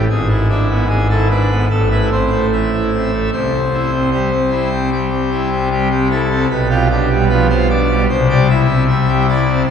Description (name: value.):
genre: classical, chorale-style piece for pipe organ.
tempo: 75 BPM.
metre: 4/4.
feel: rubato.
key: unclear.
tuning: A4 = 440 Hz.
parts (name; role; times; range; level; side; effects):
pipe organ, full organ; solo; 0.0-9.7 s; G#1 to E5; -13 LUFS; equal; none.
room: wet cathedral reverb, RT60 4.3 s.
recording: heard from further back in the room.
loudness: -13 LUFS.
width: side -7 dB against mid.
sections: 0.0-9.7 A section.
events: none.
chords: 0.1 E7/G#; 1.7 Am; 3.3 C; 6.5 G7/B; 8.1 C.